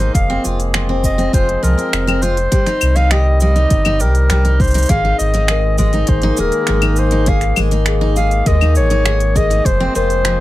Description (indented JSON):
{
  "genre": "folktronica",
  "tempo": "101 BPM",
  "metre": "4/4",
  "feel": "straight",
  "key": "Ab major",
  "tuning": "A4 = 441 Hz",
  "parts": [
    { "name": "clear clarinet", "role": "melody", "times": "0.0-10.4 s", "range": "Bb4 to F5", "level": "-19 LUFS", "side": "equal", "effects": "vintage 12-bit sampler grit, digital delay" },
    { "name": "hand-pumped harmonium", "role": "sustained chords", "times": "0.0-10.4 s", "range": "Eb3 to Ab4", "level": "-24 LUFS", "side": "left 1 dB", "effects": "none" },
    { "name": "picked steel-string acoustic guitar", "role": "arpeggios", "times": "0.0-10.4 s", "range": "F3 to Ab4", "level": "-22 LUFS", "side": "right 1 dB", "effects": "digital delay" },
    { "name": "warm sub bass", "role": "bass", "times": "0.0-10.4 s", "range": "Eb1 to Eb2", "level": "-16 LUFS", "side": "equal", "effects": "none" },
    { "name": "organic electronic drum kit", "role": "drums", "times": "0.0-10.4 s", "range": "claves, finger snaps, hi-hat, shaker", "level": "-22 LUFS", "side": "equal", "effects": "none" },
    { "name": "electronic kick drum", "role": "drums", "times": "0.1-9.8 s", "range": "none", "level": "-16 LUFS", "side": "equal", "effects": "none" },
    { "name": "large celesta", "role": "second line", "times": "4.9-10.4 s", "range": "Ab4 to Bb4", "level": "-23 LUFS", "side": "left 7 dB", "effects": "digital delay" }
  ],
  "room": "light reverb",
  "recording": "none",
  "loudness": "-12 LUFS",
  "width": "side -16 dB against mid",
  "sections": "0.0-10.4 A section",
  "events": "none",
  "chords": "0.1 Fm; 2.5 Cm; 4.9 Absus2; 9.7 Fm"
}